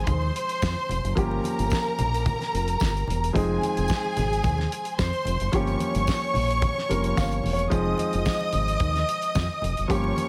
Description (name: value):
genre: disco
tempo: 110 BPM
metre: 4/4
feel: straight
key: F minor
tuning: A4 = 440 Hz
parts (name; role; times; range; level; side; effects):
- clear studio string section; second line; 0.0-10.3 s; Ab4 to Eb6; -30 LUFS; equal; none
- warm concert grand piano; accompaniment; 0.0-10.3 s; F3 to F5; -32 LUFS; equal; none
- fingered electric bass; bass; 0.0-10.1 s; E1 to F2; -29 LUFS; equal; none
- damped 70s drum kit; drums; 0.1-10.3 s; hi-hat, kick drum, snare drum; -31 LUFS; equal; none
- congas; percussion; 0.1-10.3 s; none; -37 LUFS; equal; none
- tambourine; percussion; 0.6-9.5 s; none; -46 LUFS; equal; none
room: light reverb, studio reverb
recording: none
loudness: -25 LUFS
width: mono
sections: 0.0-10.3 A section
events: grand piano fill 6.9-7.7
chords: 0.0 Fm7; 1.2 Gm7b5; 3.4 Fm7; 5.5 Gm7b5; 7.7 Fm7